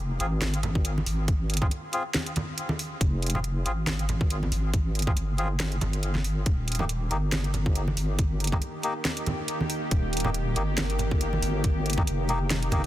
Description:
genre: deep dubstep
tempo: 139 BPM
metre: 4/4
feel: swing 56% on 16ths, half-time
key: F minor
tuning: A4 = 439 Hz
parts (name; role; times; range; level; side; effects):
- deep soft wobble bass; bass; 0.0-12.9 s; Eb1 to Ab1; -28 LUFS; equal; chorus
- melodica; stabs; 0.2-12.8 s; Bb3 to Ab4; -35 LUFS; left 2 dB; dub echo
- garage drum kit; drums; 0.2-12.9 s; hi-hat, snare drum; -32 LUFS; equal; overdrive
- congas; percussion; 0.4-12.8 s; none; -33 LUFS; right 2 dB; none
- electronic kick drum; drums; 0.8-12.8 s; none; -25 LUFS; equal; overdrive
- bowed-like drone; sustained chords; 7.6-12.9 s; Eb3 to G4; -33 LUFS; equal; built-in reverb
room: digital ambience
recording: dense, heavily limited modern master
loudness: -24 LUFS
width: side -14 dB against mid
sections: 0.0-12.9 A section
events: none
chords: 0.0 Fm; 6.5 Eb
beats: 0.42 0.85 | 1.28 1.71 2.14 2.58 | 3.01 3.44 3.87 4.30 | 4.73 5.17 5.60 6.03 | 6.46 6.89 7.32 7.76 | 8.19 8.62 9.05 9.48 | 9.91 10.35 10.78 11.21 | 11.64 12.07 12.50

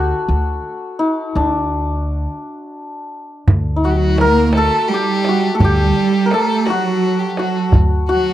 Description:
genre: Persian modal ensemble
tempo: 56 BPM (dotted quarters)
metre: 6/8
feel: straight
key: D dastgah homayun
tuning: A4 = 440 Hz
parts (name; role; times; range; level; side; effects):
- santur; melody; 0.0-8.3 s; D4 to Bb4; -19 LUFS; left 1 dB; none
- upright bass; bass; 0.0-8.3 s; D2; -18 LUFS; equal; none
- tombak; percussion; 3.5-7.9 s; none; -16 LUFS; right 1 dB; none
- clear symphonic cello section; second line; 3.8-8.3 s; F#3 to Bb3; -18 LUFS; right 5 dB; none
- warm violin; second line; 3.8-8.3 s; F#4 to Bb4; -21 LUFS; left 3 dB; none
room: little or no reverb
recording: dry, close 1970s-style studio recording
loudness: -14 LUFS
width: side -13 dB against mid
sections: 0.0-3.5 A section; 3.5-8.3 B section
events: stop 2.4-3.5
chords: none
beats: 0.28 | 1.34 2.41 | 3.48 4.54 | 5.61 6.67 | 7.74

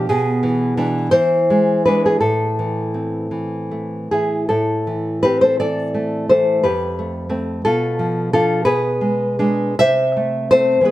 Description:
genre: romantic piece for solo classical guitar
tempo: 51-61 BPM (dotted quarters)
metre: 6/8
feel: rubato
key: A minor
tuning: A4 = 440 Hz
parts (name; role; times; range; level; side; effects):
- nylon-string guitar; solo; 0.0-10.9 s; F2 to E5; -16 LUFS; equal; none
room: light reverb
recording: close, detailed microphones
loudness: -16 LUFS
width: side -15 dB against mid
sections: 0.0-4.5 A section; 4.5-10.9 B section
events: none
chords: 0.1 E7/B; 1.1 E7; 2.2 Am; 6.6 F; 7.7 Bm7b5; 8.7 Bm6; 9.8 Am/C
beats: | 0.08 1.11 | 2.22 3.35 | 4.50 5.59 | 6.64 7.66 | 8.66 9.77 | 10.86

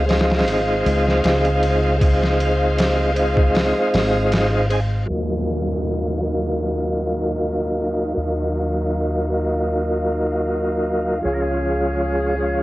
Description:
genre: trip hop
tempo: 78 BPM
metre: 4/4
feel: swing 53% on 16ths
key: Eb dorian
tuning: A4 = 440 Hz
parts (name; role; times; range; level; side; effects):
- tonewheel organ; accompaniment; 0.0-12.6 s; F3 to Ab4; -20 LUFS; equal; fast rotary speaker, tremolo, low-pass filter, cassette tape, tape echo
- clear studio string section; sustained chords; 0.0-12.6 s; Gb3 to F5; -30 LUFS; equal; low-pass filter, cassette tape
- deep dub fingered electric bass; bass; 0.0-12.6 s; Ab1 to Eb2; -23 LUFS; equal; none
- trip hop sampler-style drum kit; drums; 0.1-4.9 s; hi-hat, kick drum, ride cymbal, snare drum; -23 LUFS; equal; cassette tape
- downlifter; sound effects; 5.1-11.2 s; none; -32 LUFS; equal; none
- trumpet with metal mute; melody; 11.3-12.6 s; Ab4 to Bb4; -30 LUFS; equal; none
room: light reverb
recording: home recording on cassette, vinyl crackle, low-pass filter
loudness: -17 LUFS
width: side -17 dB against mid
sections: 0.0-5.1 A section; 5.1-12.6 B section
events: filter sweep on tonewheel organ 5.1-12.6; filter sweep on string section 5.1-12.6; filter sweep 5.1-12.6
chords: 0.0 Dbmaj7; 5.1 Ebmadd9; 11.2 Db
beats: 0.47 1.24 | 2.01 2.78 3.55 4.32 | 5.09 5.86 6.62 7.39 | 8.16 8.93 9.70 10.47 | 11.24 12.01

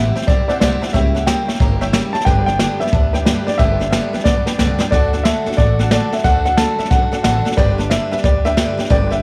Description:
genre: rockabilly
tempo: 181 BPM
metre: 4/4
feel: swing 64% on 8ths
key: G major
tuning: A4 = 440 Hz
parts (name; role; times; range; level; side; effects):
- dark upright piano; melody; 0.0-9.2 s; D5 to A5; -22 LUFS; equal; none
- honky-tonk upright piano; accompaniment; 0.0-9.2 s; A4 to A#5; -29 LUFS; equal; none
- picked steel-string acoustic guitar; accompaniment; 0.0-9.2 s; G2 to B4; -26 LUFS; equal; none
- upright bass; bass; 0.0-9.2 s; G1 to D2; -22 LUFS; equal; none
- jazz brush drum kit; drums; 0.2-9.1 s; hi-hat, kick drum, snare drum; -20 LUFS; equal; none
room: studio reverb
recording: none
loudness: -16 LUFS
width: mono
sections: 0.0-9.2 A section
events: drum fill 4.3-4.9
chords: 0.0 C; 0.9 C#dim7; 2.3 G; 4.9 D; 7.6 G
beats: 0.28 0.61 | 0.94 1.27 1.60 1.94 | 2.27 2.60 2.93 3.26 | 3.59 3.92 4.25 4.59 | 4.92 5.25 5.58 5.91 | 6.25 6.58 6.91 7.24 | 7.57 7.91 8.24 8.57 | 8.90

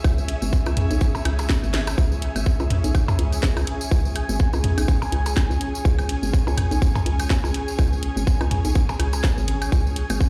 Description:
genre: minimal techno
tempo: 124 BPM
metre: 4/4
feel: swing 57% on 16ths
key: C# minor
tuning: A4 = 440 Hz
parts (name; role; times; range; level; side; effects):
- hollow knocking FM bass; bass; 0.0-10.2 s; G#1 to C#2; -25 LUFS; equal; sidechain pumping
- electronic kick drum; drums; 0.0-10.3 s; none; -22 LUFS; equal; studio reverb
- electronic percussion blips and toms; percussion; 0.0-10.2 s; none; -29 LUFS; equal; studio reverb, dub echo
- tambourine; percussion; 0.0-10.3 s; none; -39 LUFS; equal; none
- ethereal airy pad; texture; 0.0-10.3 s; C#4 to G#5; -32 LUFS; equal; ensemble chorus, built-in reverb, sidechain pumping
- garage drum kit; drums; 0.3-10.1 s; hi-hat, snare drum; -30 LUFS; equal; studio reverb
room: light reverb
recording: played on a big sound system in a bare room, large studio reverb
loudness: -22 LUFS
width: mono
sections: 0.0-10.3 A section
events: drum fill 1.7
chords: 0.0 C#5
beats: | 0.04 0.53 1.01 1.50 | 1.98 2.46 2.95 3.43 | 3.92 4.40 4.88 5.37 | 5.85 6.33 6.82 7.30 | 7.79 8.27 8.75 9.24 | 9.72 10.21

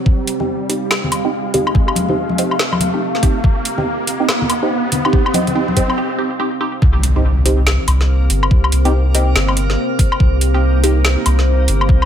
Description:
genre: deep dubstep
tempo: 142 BPM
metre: 4/4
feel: swing 61% on 16ths, half-time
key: C minor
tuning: A4 = 441 Hz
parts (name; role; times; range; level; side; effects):
- deep dark ambient pad; sustained chords; 0.0-12.1 s; C4 to F5; -23 LUFS; equal; chorus, built-in reverb
- riser and impact; sound effects; 0.0-8.5 s; none; -23 LUFS; equal; none
- electronic kick drum; drums; 0.1-12.0 s; none; -13 LUFS; equal; overdrive
- garage drum kit; drums; 0.3-12.1 s; hi-hat, snare drum, woodblock; -19 LUFS; left 1 dB; overdrive
- filtered dub chord stab; stabs; 0.4-11.0 s; C4 to G4; -21 LUFS; right 2 dB; phaser, dub echo
- congas; percussion; 0.4-5.7 s; none; -23 LUFS; left 2 dB; dub echo
- soft dub sub bass; bass; 6.8-12.1 s; G1 to C2; -14 LUFS; equal; none
- backwards swelling texture; texture; 6.8-12.1 s; Bb3 to Bb4; -26 LUFS; right 2 dB; built-in reverb
room: light reverb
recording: none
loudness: -13 LUFS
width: side -9 dB against mid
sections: 0.0-6.8 A section; 6.8-12.1 B section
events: build-up 0.0-6.8; riser 0.0-6.0; filter sweep on synth stab 0.0-6.8; break 6.0-6.8; drop 6.8-12.1; impact 6.8-8.5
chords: 0.0 Cm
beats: | 0.06 0.48 0.91 1.33 | 1.75 2.17 2.60 3.02 | 3.44 3.86 4.29 4.71 | 5.13 5.55 5.98 6.40 | 6.82 7.24 7.67 8.09 | 8.51 8.93 9.36 9.78 | 10.20 10.62 11.05 11.47 | 11.89

